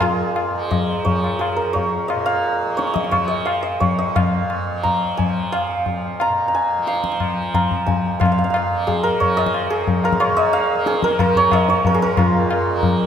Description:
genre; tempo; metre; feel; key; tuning
indian classical, Hindustani; 178 BPM; 3/4; straight; F raga malkauns; A4 = 439 Hz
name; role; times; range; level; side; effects
santur; melody; 0.0-13.1 s; F4 to Bb5; -19 LUFS; right 1 dB; none
tanpura; drone; 0.0-13.1 s; F2 to F3; -27 LUFS; right 3 dB; none
tabla; percussion; 0.0-12.9 s; none; -20 LUFS; left 3 dB; none
room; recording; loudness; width
wet scoring stage reverb, RT60 1.7 s; none; -16 LUFS; side -8 dB against mid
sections
0.0-8.2 A section; 8.2-13.1 B section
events
speeding up 0.0-13.1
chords
none

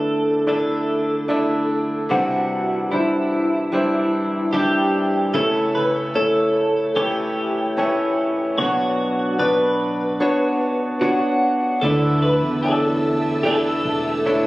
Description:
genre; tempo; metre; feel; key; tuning
pop; 74 BPM; 4/4; straight; D major; A4 = 440 Hz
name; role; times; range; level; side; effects
twelve-string electric guitar; melody; 0.0-14.5 s; E4 to B4; -22 LUFS; equal; phaser, digital delay
clear concert grand piano; accompaniment; 0.0-14.5 s; B2 to D5; -21 LUFS; equal; none
direct-recorded clean electric guitar; arpeggios; 0.0-14.5 s; B2 to C#5; -27 LUFS; right 1 dB; spring reverb
warm studio string section; sustained chords; 11.8-14.5 s; A4 to E6; -30 LUFS; equal; none
fretless electric bass; bass; 11.8-14.5 s; E1 to E2; -24 LUFS; equal; none
room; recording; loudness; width
moderate lush hall reverb, RT60 2.6 s; recorded on a phone in the room, studio reverb; -18 LUFS; side -18 dB against mid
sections
0.0-14.5 A section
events
none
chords
0.0 Dsus2; 2.1 Cadd9; 5.3 A/C#; 8.6 Bmadd9; 11.8 Dsus2

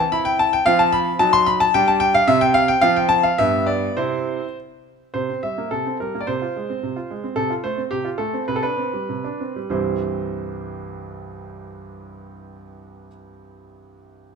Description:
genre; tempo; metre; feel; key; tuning
classical-period piano sonatina; 92-112 BPM; 2/4; rubato; C major; A4 = 435 Hz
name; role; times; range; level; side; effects
clear grand piano; solo; 0.0-14.3 s; C2 to C6; -18 LUFS; equal; none
room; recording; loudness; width
moderate recital hall reverb, RT60 1.6 s; close, detailed microphones; -18 LUFS; side -6 dB against mid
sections
0.0-5.2 A section; 5.2-9.7 B section; 9.7-12.3 C section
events
slowing down 6.8-9.7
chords
0.0 C; 0.7 F5; 1.2 F#dim7; 1.8 G5; 2.3 N.C.; 2.8 F5; 3.4 G; 4.0 C; 5.2 C5; 6.3 Fm/C; 7.4 F/C; 8.5 G/C; 9.7 C

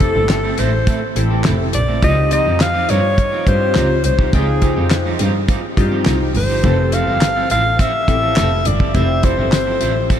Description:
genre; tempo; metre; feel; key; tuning
early-eighties boogie funk; 104 BPM; 4/4; straight; F major; A4 = 440 Hz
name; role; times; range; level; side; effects
breathy alto saxophone; melody; 0.0-10.2 s; Ab4 to F5; -19 LUFS; left 1 dB; analog delay
chorused polysynth; accompaniment; 0.0-9.6 s; E3 to G5; -22 LUFS; left 2 dB; phaser
electric guitar at the edge of break-up; riff; 0.0-10.2 s; F3 to A4; -25 LUFS; right 6 dB; lush chorus
warm double bass; bass; 0.0-10.0 s; F1 to G2; -19 LUFS; equal; none
damped 70s drum kit; drums; 0.0-10.2 s; handclaps, hi-hat, kick drum, snare drum; -19 LUFS; equal; none
room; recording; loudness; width
moderate huge ambient reverb, RT60 6.1 s; dreamy mix soaked in reverb; -13 LUFS; side -9 dB against mid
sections
0.0-10.2 A section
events
none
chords
0.0 Fmaj7 (rootless); 2.0 Dbmaj9#11; 6.6 Fmaj7

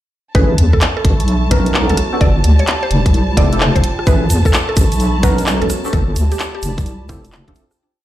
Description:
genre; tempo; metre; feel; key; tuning
UK garage, two-step garage; 129 BPM; 4/4; swing 66% on 16ths; unclear; A4 = 440 Hz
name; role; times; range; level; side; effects
warm studio violin section; sustained chords; 0.3-7.8 s; A5; -27 LUFS; equal; sidechain pumping
percussive organ stab; stabs; 0.3-7.6 s; A3 to B4; -22 LUFS; equal; ensemble chorus, tape echo
deep soft wobble bass; bass; 0.3-7.5 s; F1 to E2; -14 LUFS; equal; chorus, sidechain pumping
electronic kick drum; drums; 0.3-7.5 s; none; -14 LUFS; equal; none
garage drum kit; drums; 0.3-7.8 s; handclaps, hi-hat, rim click; -20 LUFS; equal; none
warbly tape-like pad; texture; 0.3-7.8 s; B3 to C#6; -26 LUFS; right 1 dB; chorus, built-in reverb, sidechain pumping
mallet-like synth pluck; melody; 0.4-7.6 s; D4 to D5; -24 LUFS; right 1 dB; chorus, digital delay
egg shaker; percussion; 4.1-7.8 s; none; -30 LUFS; right 3 dB; none
room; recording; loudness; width
little or no reverb; played on a big sound system in a bare room, large studio reverb; -12 LUFS; side -14 dB against mid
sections
0.3-7.8 groove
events
fade-out 5.3-7.8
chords
0.3 Amaj9; 1.3 Bmaj9; 2.0 Gmaj9; 2.9 Fmaj9; 4.1 Amaj9; 5.0 Bmaj9; 5.7 Gmaj9; 6.6 Fmaj9

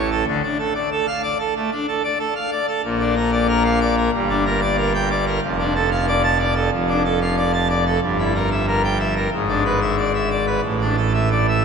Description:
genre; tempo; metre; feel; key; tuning
classical, organ toccata; 93 BPM; 4/4; straight; D minor; A4 = 439 Hz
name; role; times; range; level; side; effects
pipe organ, full organ; solo; 0.0-11.6 s; F1 to A5; -17 LUFS; equal; none
room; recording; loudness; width
wet cathedral reverb, RT60 6.2 s; none; -17 LUFS; side -6 dB against mid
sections
0.0-11.6 A section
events
none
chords
0.3 Dm; 2.8 Bb; 4.1 Gm; 5.4 Dm/F; 8.0 Edim/G; 9.3 E7/G#; 10.6 Asus4

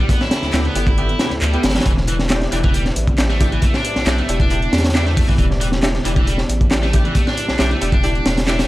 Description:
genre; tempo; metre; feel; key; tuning
breakbeat, breaks; 136 BPM; 4/4; straight; E minor; A4 = 440 Hz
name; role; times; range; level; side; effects
dark analog pad; sustained chords; 0.0-8.7 s; B3 to D5; -27 LUFS; equal; chorus, sidechain pumping
high-gain distorted guitar; riff; 0.0-8.7 s; E3 to E4; -24 LUFS; equal; distortion, vintage 12-bit sampler grit, tape echo
saturated sub bass; bass; 0.0-8.6 s; E1 to E2; -20 LUFS; equal; none
crunchy breakbeat drum kit; drums; 0.1-8.7 s; hi-hat, kick drum, snare drum; -17 LUFS; equal; none
punchy analog drum machine; drums; 0.1-8.7 s; handclaps, hi-hat; -28 LUFS; equal; none
orchestra-hit-like synth stab; stabs; 0.5-8.6 s; B3 to G4; -27 LUFS; equal; built-in reverb, tape echo
room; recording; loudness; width
small room reverb; dry, gritty hardware recording; -14 LUFS; side -17 dB against mid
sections
0.0-8.7 A section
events
kick drops out 1.0-1.9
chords
0.0 G6; 1.9 Em7

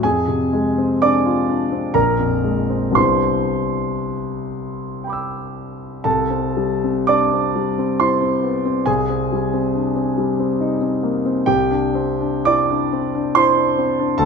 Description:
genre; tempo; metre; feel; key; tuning
classical, impressionist solo piano; 55-73 BPM; 3/4; rubato; C major; A4 = 440 Hz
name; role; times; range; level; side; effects
warm concert grand piano; solo; 0.0-14.3 s; Bb1 to E6; -17 LUFS; equal; none
room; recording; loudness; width
moderate recital hall reverb, RT60 1.5 s; close, detailed microphones; -16 LUFS; side -5 dB against mid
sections
0.0-6.1 A section; 6.1-14.3 A section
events
none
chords
0.0 Fm6; 1.9 Bbsus2; 3.0 Cmaj9; 6.1 C6; 8.9 Abmaj7/C; 11.5 Cadd9

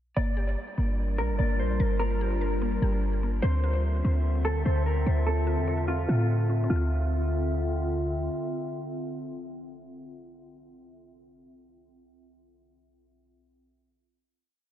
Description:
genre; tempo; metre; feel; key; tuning
hip hop, atmospheric cloud-rap; 147 BPM; 4/4; half-time; D minor; A4 = 440 Hz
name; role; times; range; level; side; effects
mellow electric guitar; melody; 0.2-7.9 s; F4 to D5; -34 LUFS; equal; analog chorus, low-pass filter, tape echo
warbly tape-like pad; sustained chords; 0.8-10.1 s; D3 to E5; -33 LUFS; left 2 dB; chorus, built-in reverb
mallet-like synth pluck; arpeggios; 0.2-10.1 s; Bb3 to E5; -39 LUFS; left 3 dB; chorus, low-pass filter, tape echo
clean 808-style bass; bass; 0.2-8.3 s; G1 to A2; -26 LUFS; equal; none
room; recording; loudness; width
moderate huge ambient reverb, RT60 7.9 s; dreamy mix soaked in reverb, low-pass filter, nothing above 7.5 kHz, faint mains hum; -25 LUFS; side -12 dB against mid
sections
0.2-6.7 breakdown; 6.7-10.0 final chord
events
none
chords
0.2 Gm7; 3.4 Dm9

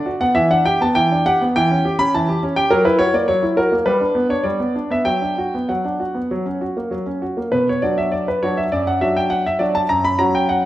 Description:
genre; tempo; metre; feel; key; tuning
classical-period piano sonatina; 101 BPM; 4/4; uneven beats, rubato; B minor; A4 = 441 Hz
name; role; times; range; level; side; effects
clear baby grand piano; solo; 0.0-10.6 s; F#2 to B5; -16 LUFS; equal; none
room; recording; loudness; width
wet recital hall reverb, RT60 1.6 s; none; -16 LUFS; side -14 dB against mid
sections
0.0-7.5 A section; 7.5-10.7 A section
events
none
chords
0.4 Em7; 1.5 C#dim/E; 2.7 F#7; 3.8 G; 5.1 Bm/F#; 6.3 F#; 7.5 Bm; 9.9 F#5

